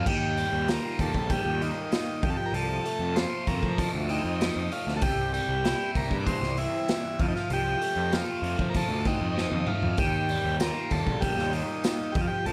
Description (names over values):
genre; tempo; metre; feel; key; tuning
psychedelic rock; 97 BPM; 4/4; straight; F mixolydian; A4 = 441 Hz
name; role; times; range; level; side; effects
combo organ; melody; 0.0-12.5 s; Eb4 to D5; -33 LUFS; equal; spring reverb, tape echo
biting overdriven guitar; riff; 0.0-12.5 s; C3 to F4; -36 LUFS; equal; phaser
fuzz picked electric bass; bass; 0.0-12.5 s; Bb1 to F3; -33 LUFS; equal; overdrive
raw garage drum kit; drums; 0.1-12.5 s; crash cymbal, hi-hat, kick drum, snare drum, toms; -32 LUFS; equal; none
tambourine; percussion; 10.6-12.0 s; none; -45 LUFS; equal; none
room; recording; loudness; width
light reverb, small room ambience; none; -28 LUFS; mono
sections
0.1-12.5 A section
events
drum fill 9.4-10.0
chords
0.1 Ebadd9; 2.2 F; 5.0 C; 7.2 F; 10.0 Ebadd9